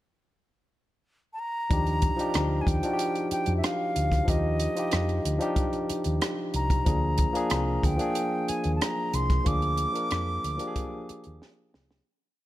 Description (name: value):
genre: lush 1970s-style soul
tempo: 93 BPM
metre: 4/4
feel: straight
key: Eb major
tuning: A4 = 440 Hz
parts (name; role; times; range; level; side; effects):
- reedy concert flute; melody; 1.3-11.4 s; Eb5 to D6; -31 LUFS; equal; none
- barky tine electric piano; accompaniment; 1.7-12.1 s; F3 to Bb4; -30 LUFS; left 1 dB; overdrive
- hollow-body short-scale fingered electric bass; bass; 1.7-12.0 s; C2 to F2; -28 LUFS; equal; none
- compact cocktail drum kit; drums; 1.7-12.1 s; hi-hat, kick drum, rim click, snare drum; -29 LUFS; equal; none
room: small room ambience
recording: none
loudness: -24 LUFS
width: side -15 dB against mid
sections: 0.0-1.7 pickup bar; 1.7-12.1 verse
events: fade-out 9.5-12.1; drum fill 11.4-12.1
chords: 0.0 N.C.; 1.7 Ebmaj9; 6.9 Bb7